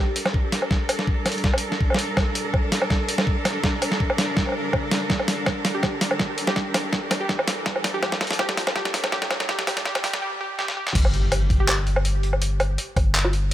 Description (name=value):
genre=half-time drum and bass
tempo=164 BPM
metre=4/4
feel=swing 53% on 16ths, half-time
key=G minor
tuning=A4 = 438 Hz
part: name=glassy wavetable pluck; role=melody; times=0.0, 5.7-11.7 s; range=G4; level=-31 LUFS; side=right 1 dB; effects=chorus, tape echo
part: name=clear studio cello section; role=sustained chords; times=0.0-10.2 s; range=G3 to Bb4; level=-28 LUFS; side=right 1 dB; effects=sidechain pumping
part: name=riser and impact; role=sound effects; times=0.1-12.4 s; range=none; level=-36 LUFS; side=equal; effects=none
part: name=boom bap sampler-style drum kit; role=drums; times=0.2-13.5 s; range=crash cymbal, handclaps, hi-hat, snare drum, woodblock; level=-24 LUFS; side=equal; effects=none
part: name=electronic kick drum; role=drums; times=0.3-13.0 s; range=none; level=-24 LUFS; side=equal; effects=none
part: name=long sustained 808-style bass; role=bass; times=11.0-13.5 s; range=G1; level=-22 LUFS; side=equal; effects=none
room=light reverb, digital ambience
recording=high-pass filter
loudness=-20 LUFS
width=side -12 dB against mid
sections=0.0-11.0 A section; 11.0-13.5 B section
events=build-up 0.0-11.0; drum fill 0.0-10.2, 10.6-11.0; filter sweep 0.0-11.0; drop 11.0-13.5; impact 11.0-12.4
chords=0.0 Gmadd9; 11.0 N.C.